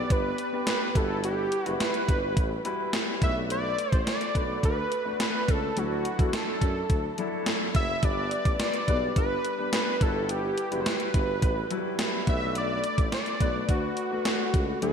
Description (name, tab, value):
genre	1980s-style pop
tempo	106 BPM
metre	4/4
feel	straight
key	unclear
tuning	A4 = 440 Hz
part	wide unison lead	melody	0.0-14.9 s	F#4 to E5	-30 LUFS	right 1 dB	shimmer reverb, ping-pong delay
part	warm concert grand piano	accompaniment	0.0-14.9 s	F#3 to D5	-32 LUFS	left 2 dB	wide subtle chorus, shimmer reverb
part	warm tuba	bass	0.0-14.9 s	F#1 to F#2	-33 LUFS	equal	none
part	gated 80s digital drum machine	drums	0.1-14.9 s	hi-hat, kick drum, snare drum	-27 LUFS	equal	gated reverb, gated reverb snare, overdrive
room	moderate lush hall reverb, RT60 1.9 s, digital ambience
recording	bright 1980s-style digital production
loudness	-24 LUFS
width	side -7 dB against mid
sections	0.0-14.9 A section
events	none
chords	0.0 G; 1.0 Emadd9; 3.2 Bm7; 5.8 Dadd9; 8.0 G; 10.0 Emadd9; 12.3 Bm7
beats	0.10 0.67 | 1.24 1.80 2.37 2.93 | 3.50 4.07 4.63 5.20 | 5.76 6.33 6.90 7.46 | 8.03 8.59 9.16 9.73 | 10.29 10.86 11.42 11.99 | 12.56 13.12 13.69 14.25 | 14.82